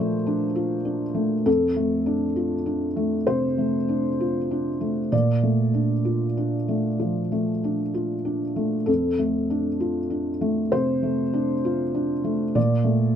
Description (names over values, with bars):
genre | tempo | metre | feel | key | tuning
neoclassical minimalist piano | 65 BPM | 4/4 | rubato | F major | A4 = 440 Hz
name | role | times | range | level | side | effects
felt-muted upright piano | solo | 0.0-13.2 s | F2 to D5 | -21 LUFS | equal | none
room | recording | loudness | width
light reverb | dark, warm production | -21 LUFS | side -9 dB against mid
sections
0.0-13.2 A section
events
none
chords
0.0 Bbmaj7; 1.5 F6; 5.1 Bbmaj7; 8.9 F6; 12.6 Bbmaj7